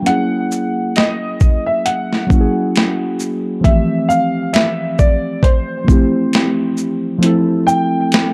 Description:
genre	lo-fi hip hop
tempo	67 BPM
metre	4/4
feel	swing 56% on 16ths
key	unclear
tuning	A4 = 440 Hz
part	warm upright piano	melody	0.0-8.3 s	C5 to G5	-22 LUFS	equal	low-pass filter, analog delay
part	muted felt-like synth keys	accompaniment	0.0-8.3 s	E3 to A4	-19 LUFS	equal	chorus, cassette tape, low-pass filter
part	boom bap sampler-style drum kit	drums	0.1-8.3 s	hi-hat, kick drum, shaker, snare drum	-17 LUFS	equal	overdrive
room	light reverb, digital ambience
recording	cassette tape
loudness	-16 LUFS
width	mono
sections	0.0-8.3 A section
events	none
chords	0.1 Gb9; 3.6 Fmaj9

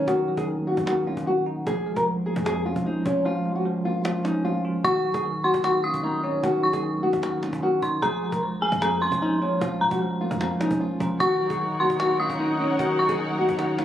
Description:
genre	hip hop, trap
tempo	151 BPM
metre	4/4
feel	half-time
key	Eb dorian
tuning	A4 = 442 Hz
part	nylon-string guitar	melody	0.0-13.8 s	Db4 to Bb4	-25 LUFS	left 1 dB	low-pass filter
part	bell-like tine electric piano	accompaniment	0.0-13.8 s	Eb3 to F4	-28 LUFS	right 1 dB	medium stereo tremolo, low-pass filter
part	warm 808-style bass	bass	0.0-13.8 s	Eb1 to Bb2	-36 LUFS	equal	none
part	cajon	drums	0.1-13.8 s	none	-35 LUFS	equal	none
part	dark detuned synth bell	second line	4.8-13.2 s	Ab5 to Eb6	-26 LUFS	equal	chorus, ping-pong delay
part	muted studio string section	sustained chords	11.2-13.8 s	Eb4 to Gb5	-30 LUFS	left 2 dB	none
room	light reverb, studio ambience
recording	recorded on a phone in the room, club reverb, compression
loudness	-22 LUFS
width	side -11 dB against mid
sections	0.0-4.8 A section; 4.8-13.8 B section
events	kick muted 3.3-4.8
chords	0.0 Ebm7; 1.7 Bbm7; 4.8 Ebm7; 8.0 Bbm7; 11.2 Ebm7

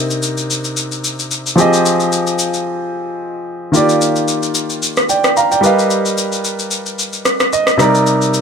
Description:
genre	amapiano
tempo	111 BPM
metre	4/4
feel	swing 55% on 16ths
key	Eb major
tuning	A4 = 440 Hz
part	warm baby grand piano	accompaniment	0.0-8.4 s	C3 to Bb5	-14 LUFS	right 1 dB	none
part	electronic shaker and rim click	drums	0.1-8.4 s	none	-18 LUFS	left 1 dB	overdrive
room	light reverb, digital ambience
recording	none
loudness	-13 LUFS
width	side -6 dB against mid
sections	0.0-8.4 A section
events	break 2.7-3.7; grand piano fill 7.3-8.1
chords	0.0 Cm9; 1.6 Fm9; 3.7 Ebmaj9; 5.6 G7alt; 7.8 Cm9

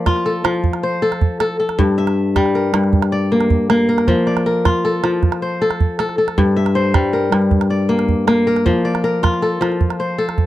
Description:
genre	west african traditional, West African string and xylophone music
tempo	105 BPM (dotted quarters)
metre	12/8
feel	straight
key	unclear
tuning	A4 = 440 Hz
part	kora	arpeggios	0.0-10.5 s	G2 to E5	-15 LUFS	left 2 dB	none
part	calabash	percussion	0.1-10.5 s	none	-18 LUFS	right 3 dB	none
room	small room ambience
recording	dry, close 1970s-style studio recording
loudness	-14 LUFS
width	side -14 dB against mid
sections	0.0-10.5 A section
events	none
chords	0.0 F; 1.8 Gm; 4.1 F; 6.4 Gm; 8.7 F

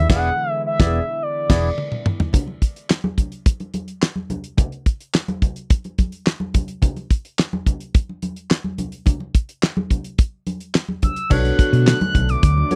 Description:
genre	early-eighties boogie funk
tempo	107 BPM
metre	4/4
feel	straight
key	B dorian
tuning	A4 = 440 Hz
part	expressive synth lead	melody	0.0-2.1, 11.0-12.8 s	D5 to F#6	-26 LUFS	equal	chorus
part	warm analog pad	sustained chords	0.0-2.3, 11.3-12.8 s	D3 to E4	-34 LUFS	equal	chorus
part	hollow-body short-scale fingered electric bass	bass	0.0-1.7, 11.3-12.6 s	E1 to B2	-21 LUFS	equal	none
part	barky tine electric piano	accompaniment	0.1-1.7, 11.3-12.8 s	B3 to D5	-26 LUFS	equal	overdrive, phaser
part	damped 70s drum kit	drums	0.1-12.8 s	crash cymbal, handclaps, hi-hat, kick drum, snare drum, toms	-19 LUFS	equal	none
part	congas	percussion	2.3-12.8 s	none	-29 LUFS	equal	none
room	little or no reverb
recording	dry, close 1970s-style studio recording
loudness	-21 LUFS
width	mono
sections	0.0-2.3 A section; 2.3-11.3 B section; 11.3-12.8 A section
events	band accent 0.1-2.3; drum fill 1.8-2.3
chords	0.0 E7; 2.3 N.C.; 11.3 Bm9

